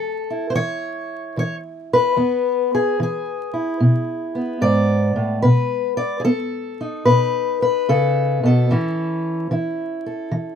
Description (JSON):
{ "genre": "acoustic country blues, solo or duo", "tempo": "74 BPM", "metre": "4/4", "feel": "swing 66% on 8ths", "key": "E major", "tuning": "A4 = 438 Hz", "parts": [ { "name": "fingerpicked acoustic archtop guitar", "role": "solo", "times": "0.0-10.6 s", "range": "E2 to D5", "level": "-18 LUFS", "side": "left 1 dB", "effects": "none" } ], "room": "moderate booth ambience, RT60 0.2 s", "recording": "minimal, uncompressed stereo recording, vinyl crackle", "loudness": "-18 LUFS", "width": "side -8 dB against mid", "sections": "0.0-10.6 A section", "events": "none", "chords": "0.0 A; 2.2 E; 5.4 B; 8.7 A" }